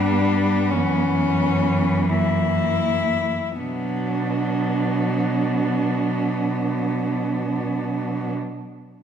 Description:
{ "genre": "classical, lyrical piece for cello ensemble", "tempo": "free time", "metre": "none", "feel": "none", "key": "B minor", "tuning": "A4 = 441 Hz", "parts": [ { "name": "warm cello", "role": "melody", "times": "0.0-8.3 s", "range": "B3 to E4", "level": "-25 LUFS", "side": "left 6 dB", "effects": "none" }, { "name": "dark cello", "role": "second line", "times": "0.0-8.3 s", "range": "A#3 to D4", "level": "-26 LUFS", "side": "right 7 dB", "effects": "none" }, { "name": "rich cello", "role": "accompaniment", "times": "0.0-8.3 s", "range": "E3 to G3", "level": "-26 LUFS", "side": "left 2 dB", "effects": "none" }, { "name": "warm cello", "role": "bass", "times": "0.0-8.3 s", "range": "F#2 to B2", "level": "-26 LUFS", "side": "right 2 dB", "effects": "none" } ], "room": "wet recital hall reverb, RT60 1.7 s", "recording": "none", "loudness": "-20 LUFS", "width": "side -8 dB against mid", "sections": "0.0-3.6 A section; 3.6-9.0 B section", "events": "slowing down 0.0-3.6", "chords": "0.0 G; 0.7 F#7; 3.6 Bm" }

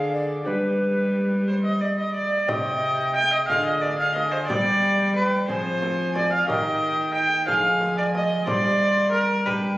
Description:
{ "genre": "classical, renaissance-style consort dance", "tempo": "60 BPM (dotted quarters)", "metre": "6/8", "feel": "straight", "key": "unclear", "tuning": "A4 = 444 Hz", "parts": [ { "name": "tenor recorder", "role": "melody", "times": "0.0-9.8 s", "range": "B4 to C6", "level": "-30 LUFS", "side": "left 1 dB", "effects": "none" }, { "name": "warm viola", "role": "second line", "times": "0.0-9.8 s", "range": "G4 to G5", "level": "-22 LUFS", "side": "right 1 dB", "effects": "none" }, { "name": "lute", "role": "accompaniment", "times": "0.0-9.8 s", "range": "C3 to Bb4", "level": "-33 LUFS", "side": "left 1 dB", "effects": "none" }, { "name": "rich cello", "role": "bass", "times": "0.0-9.8 s", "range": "C3 to G3", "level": "-26 LUFS", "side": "equal", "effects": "none" }, { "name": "frame drum", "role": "percussion", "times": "2.5-9.8 s", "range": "none", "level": "-35 LUFS", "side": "equal", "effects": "none" } ], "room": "wet recital hall reverb, RT60 1.4 s", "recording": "recorded on a phone in the room, club reverb, compression", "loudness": "-20 LUFS", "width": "side -17 dB against mid", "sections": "0.0-2.5 A section; 2.5-9.8 A section", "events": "none", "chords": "0.5 G; 2.5 Cm; 3.5 Ddim; 4.5 G; 5.5 Fm; 6.5 Eb; 7.5 Ddim; 8.5 Gsus4" }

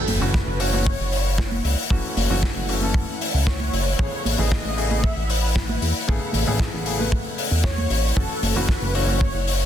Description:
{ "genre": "nu-disco, nu disco", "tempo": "115 BPM", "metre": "4/4", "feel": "straight", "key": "F# minor", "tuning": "A4 = 437 Hz", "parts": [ { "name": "wide unison lead", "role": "melody", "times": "0.0-9.7 s", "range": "A4 to E5", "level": "-30 LUFS", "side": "equal", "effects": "analog chorus, ping-pong delay" }, { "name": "warm concert grand piano", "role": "accompaniment", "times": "0.0-9.2 s", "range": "C#3 to B4", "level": "-29 LUFS", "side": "left 2 dB", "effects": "sidechain pumping, tape echo" }, { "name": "lush unison pad", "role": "sustained chords", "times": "0.5-9.7 s", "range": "E4 to F#5", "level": "-34 LUFS", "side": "equal", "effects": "chorus, phaser, sidechain pumping" }, { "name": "impact", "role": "sound effects", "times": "0.0-1.9 s", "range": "none", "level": "-33 LUFS", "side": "equal", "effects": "none" }, { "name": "chorused synth bass", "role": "bass", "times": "0.1-9.7 s", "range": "F#1 to E2", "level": "-24 LUFS", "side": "equal", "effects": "none" }, { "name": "modern studio drum kit", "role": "drums", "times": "0.1-9.6 s", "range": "hi-hat, snare drum", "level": "-26 LUFS", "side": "left 3 dB", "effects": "none" }, { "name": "congas", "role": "percussion", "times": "0.1-9.2 s", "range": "none", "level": "-32 LUFS", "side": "right 2 dB", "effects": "none" }, { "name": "kick drum", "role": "drums", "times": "0.3-9.3 s", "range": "none", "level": "-24 LUFS", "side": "equal", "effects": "soft clipping on snare" } ], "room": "small room reverb", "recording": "dense, heavily limited modern master", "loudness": "-19 LUFS", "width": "side -10 dB against mid", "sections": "0.0-9.7 A section", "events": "impact 0.0-1.9", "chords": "0.0 F#m7; 4.0 Amaj9; 8.2 F#m7" }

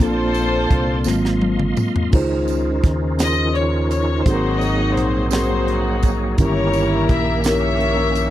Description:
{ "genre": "slow gospel", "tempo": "56 BPM (dotted quarters)", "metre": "6/8", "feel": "straight", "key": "unclear", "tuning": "A4 = 441 Hz", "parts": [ { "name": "warm studio string section", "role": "melody", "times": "0.0-8.3 s", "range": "Eb4 to Fb5", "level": "-22 LUFS", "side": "left 2 dB", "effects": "none" }, { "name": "mellow tine electric piano", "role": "accompaniment", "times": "0.0-8.3 s", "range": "G2 to C6", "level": "-22 LUFS", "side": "left 1 dB", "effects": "slow stereo tremolo" }, { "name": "bright tonewheel organ", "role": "sustained chords", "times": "0.0-8.3 s", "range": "Eb3 to C6", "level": "-25 LUFS", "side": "right 3 dB", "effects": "fast rotary speaker, chorus vibrato" }, { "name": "fingered electric bass", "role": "bass", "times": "0.0-8.3 s", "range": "G1 to Eb2", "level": "-22 LUFS", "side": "equal", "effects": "none" }, { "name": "tight funk drum kit", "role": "drums", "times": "0.0-8.3 s", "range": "crash cymbal, hi-hat, kick drum, snare drum, toms", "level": "-18 LUFS", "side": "equal", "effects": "none" }, { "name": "tambourine", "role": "percussion", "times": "0.3-8.3 s", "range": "none", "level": "-37 LUFS", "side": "right 18 dB", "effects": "none" } ], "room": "little or no reverb", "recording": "dry, close 1970s-style studio recording", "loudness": "-16 LUFS", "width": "side -13 dB against mid", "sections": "0.0-2.1 A section; 2.1-8.3 A section", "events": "drum fill 1.1-2.1", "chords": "0.0 Bbmaj9; 1.1 Ab13; 2.1 Dbmaj9; 4.3 Ab9; 6.4 Eb7b9/G" }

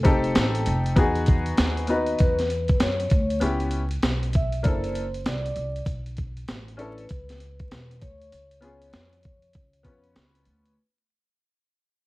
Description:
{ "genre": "hip hop, jazz-hop", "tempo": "98 BPM", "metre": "4/4", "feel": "swing 64% on 16ths", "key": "unclear", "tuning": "A4 = 440 Hz", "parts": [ { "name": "vibraphone with soft mallets", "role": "melody", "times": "0.0-10.1 s", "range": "A4 to E5", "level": "-30 LUFS", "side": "equal", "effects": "none" }, { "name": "clear upright piano", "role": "accompaniment", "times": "0.0-10.7 s", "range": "A#3 to B4", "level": "-26 LUFS", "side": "left 2 dB", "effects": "none" }, { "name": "upright bass", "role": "bass", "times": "0.0-10.8 s", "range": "E1 to F#2", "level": "-29 LUFS", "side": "equal", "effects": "none" }, { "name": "boom bap sampler-style drum kit", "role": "drums", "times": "0.0-10.8 s", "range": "hi-hat, kick drum, snare drum", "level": "-23 LUFS", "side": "equal", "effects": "none" } ], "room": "light reverb", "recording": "dark, warm production, vinyl crackle", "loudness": "-22 LUFS", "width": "side -20 dB against mid", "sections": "0.0-10.8 A section", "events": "fade-out 0.0-10.8", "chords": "0.0 F9; 1.0 Emaj9; 3.4 C#m7b5; 4.6 F#7alt; 5.9 Bm11; 8.3 C#7" }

